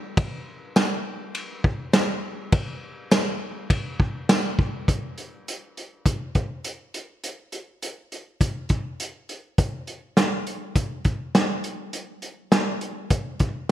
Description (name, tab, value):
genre	dream pop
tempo	102 BPM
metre	4/4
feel	straight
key	none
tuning	none
part	vintage drum kit	drums	0.2-13.5 s	hi-hat, kick drum, ride cymbal, snare drum, tambourine	-22 LUFS	equal	gated reverb
room	light reverb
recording	bright 1980s-style digital production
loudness	-23 LUFS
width	side -12 dB against mid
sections	0.0-4.9 A section; 4.9-13.7 B section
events	none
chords	none